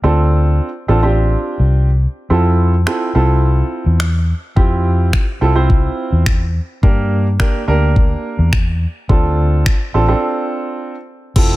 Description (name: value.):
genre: dance-pop.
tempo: 106 BPM.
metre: 4/4.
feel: straight.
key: unclear.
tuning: A4 = 440 Hz.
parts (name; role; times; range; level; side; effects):
warm grand piano; accompaniment; 0.0-11.6 s; Bb3 to C5; -18 LUFS; right 3 dB; sidechain pumping.
vintage muted fingered electric bass; bass; 0.0-11.6 s; F1 to G2; -14 LUFS; equal; sidechain pumping.
smooth R&B drum kit; drums; 2.9-11.5 s; crash cymbal, finger snaps, kick drum; -14 LUFS; equal; none.
room: little or no reverb.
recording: none.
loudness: -13 LUFS.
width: side -17 dB against mid.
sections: 0.0-11.4 A section.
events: break 10.2-11.4.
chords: 0.0 Dm7; 2.3 Fmaj7; 6.8 Gm; 9.1 Dm7.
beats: | 0.04 0.60 1.17 1.74 | 2.30 2.87 3.43 4.00 | 4.57 5.13 5.70 6.26 | 6.83 7.40 7.96 8.53 | 9.09 9.66 10.23 10.79 | 11.36.